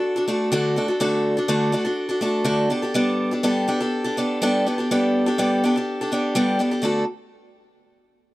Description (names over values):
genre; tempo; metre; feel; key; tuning
rock; 124 BPM; 4/4; straight; D major; A4 = 440 Hz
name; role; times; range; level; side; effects
picked acoustic archtop guitar; solo; 0.0-7.0 s; D3 to A4; -19 LUFS; equal; none
room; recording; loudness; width
studio ambience; dry, close 1970s-style studio recording; -19 LUFS; side -18 dB against mid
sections
0.0-6.8 A section; 6.8-8.3 B section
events
none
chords
0.0 D; 2.7 Gadd9; 6.8 D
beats
0.05 0.53 | 1.02 1.51 1.99 2.48 | 2.96 3.45 3.94 4.42 | 4.91 5.39 5.88 6.36 | 6.85